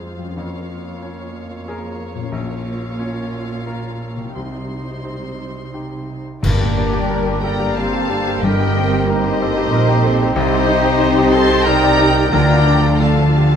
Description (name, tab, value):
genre	cinematic, emotional film score for orchestra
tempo	85-94 BPM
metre	3/4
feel	rubato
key	G minor from 6.4 s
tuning	A4 = 440 Hz
part	muted studio violin section	second line	0.0-13.6 s	Bb4 to C6	-26 LUFS	left 2 dB	none
part	bright grand piano	accompaniment	0.0-13.6 s	Bb1 to C5	-24 LUFS	left 2 dB	none
part	muted studio viola section	accompaniment	0.0-13.6 s	D3 to Bb4	-25 LUFS	right 4 dB	none
part	concert harp	arpeggios	0.0-13.6 s	F2 to C5	-25 LUFS	left 6 dB	none
part	muted studio cello section	bass	0.0-13.6 s	F2 to D3	-24 LUFS	right 3 dB	none
part	muted studio violin section	melody	6.4-13.6 s	D5 to C6	-22 LUFS	left 2 dB	none
part	clear clarinet	second line	6.4-13.6 s	D4 to C5	-25 LUFS	left 1 dB	none
part	mellow French horn section	sustained chords	6.4-13.6 s	F3 to G4	-24 LUFS	left 3 dB	none
part	muted studio double bass section	bass	6.4-13.6 s	G1 to D2	-22 LUFS	right 4 dB	none
part	clash cymbals and concert bass drum	percussion	6.4-7.7 s	none	-24 LUFS	right 1 dB	none
part	timpani	percussion	6.4-9.3, 12.3-13.3 s	G2 to D3	-25 LUFS	equal	none
part	mellow flute section	second line	6.5-13.6 s	G4 to Eb5	-24 LUFS	left 2 dB	none
room	wet recital hall reverb, RT60 1.4 s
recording	none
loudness	-14 LUFS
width	side -8 dB against mid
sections	0.0-6.4 A section; 6.4-13.6 B section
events	band accent 6.4-7.1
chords	0.4 Db6/F; 2.3 Bbm; 4.3 Cm; 6.4 Gm; 10.4 Cm; 12.3 Dm